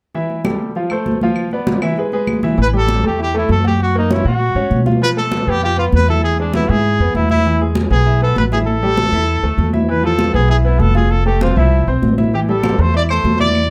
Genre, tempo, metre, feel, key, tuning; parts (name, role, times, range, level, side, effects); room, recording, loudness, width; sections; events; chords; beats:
latin, salsa; 197 BPM; 4/4; straight; A minor; A4 = 440 Hz
clear concert grand piano; accompaniment; 0.1-13.6 s; E3 to F#5; -23 LUFS; equal
congas; percussion; 0.1-13.7 s; -22 LUFS; equal
claves; percussion; 0.5-2.4, 12.6-13.7 s; -33 LUFS; equal
clear trumpet; melody; 2.6-13.7 s; D4 to D5; -21 LUFS; equal
upright bass; bass; 2.6-13.7 s; F1 to B2; -18 LUFS; equal
light reverb; -15 LUFS; mono
0.1-2.6 A section; 2.6-13.7 B section
0.1 A5; 0.8 F; 1.4 Dm69; 2.0 E; 2.6 A5; 3.8 F#; 5.0 G13; 6.2 E; 8.7 A5; 9.9 E5; 11.1 Fmaj7; 12.3 Am7
| 0.15 0.45 0.76 1.06 | 1.36 1.67 1.97 2.28 | 2.58 2.88 3.19 3.49 | 3.80 4.10 4.41 4.71 | 5.01 5.32 5.62 5.93 | 6.23 6.54 6.84 7.14 | 7.45 7.75 8.06 8.36 | 8.67 8.97 9.28 9.58 | 9.89 10.19 10.50 10.80 | 11.11 11.41 11.72 12.02 | 12.33 12.63 12.94 13.24 | 13.55